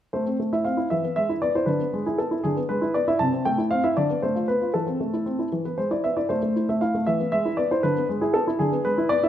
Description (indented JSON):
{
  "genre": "classical-period piano sonatina",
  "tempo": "78 BPM (dotted quarters)",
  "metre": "6/8",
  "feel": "straight",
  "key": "A minor",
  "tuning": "A4 = 440 Hz",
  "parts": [
    { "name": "warm baby grand piano", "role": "solo", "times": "0.1-9.3 s", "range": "C3 to A5", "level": "-21 LUFS", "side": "equal", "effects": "none" }
  ],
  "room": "moderate recital hall reverb, RT60 1.4 s",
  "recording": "none",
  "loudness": "-21 LUFS",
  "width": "side -11 dB against mid",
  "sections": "0.1-9.3 A section",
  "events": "none",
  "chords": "0.1 Am; 0.9 E; 1.7 E7/D; 3.2 Am/C; 4.0 Bm7b5/D; 4.7 Am/E; 5.5 E; 6.3 Am; 7.1 E; 7.8 E7/D",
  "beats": "| 0.13 0.90 | 1.67 2.43 | 3.20 3.96 | 4.73 5.51 | 6.29 7.07 | 7.84 8.60"
}